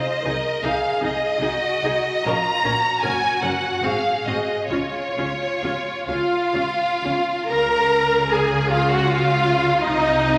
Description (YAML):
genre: classical, slow romantic movement for string orchestra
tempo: 58-82 BPM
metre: 3/4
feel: rubato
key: Db major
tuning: A4 = 442 Hz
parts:
  - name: rich symphonic violin section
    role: melody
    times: 0.0-10.4 s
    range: Db5 to Bb5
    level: -25 LUFS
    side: equal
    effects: none
  - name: rich symphonic violin section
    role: second line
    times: 0.0-10.4 s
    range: Eb4 to C5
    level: -27 LUFS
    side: equal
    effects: none
  - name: rich chamber cello section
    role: bass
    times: 0.2-10.4 s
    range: Gb2 to Db3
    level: -32 LUFS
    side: equal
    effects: none
  - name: warm chamber double bass section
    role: bass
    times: 0.2-10.4 s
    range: Gb1 to Db2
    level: -34 LUFS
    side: equal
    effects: none
  - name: rich studio viola section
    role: accompaniment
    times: 0.3-10.4 s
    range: C4 to Bb4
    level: -27 LUFS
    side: equal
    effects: none
room: wet scoring stage reverb, RT60 2.0 s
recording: vinyl crackle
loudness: -21 LUFS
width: mono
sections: 0.0-7.5 A section; 7.5-10.4 B section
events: none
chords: 0.0 Ab/C; 2.2 Bbm; 3.0 Gb; 3.8 Ab7; 4.7 Db; 9.8 Ab/C (rootless)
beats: 0.63 1.41 | 2.25 3.03 3.84 | 4.71 5.62 6.54 | 7.49 8.31 9.09 | 9.83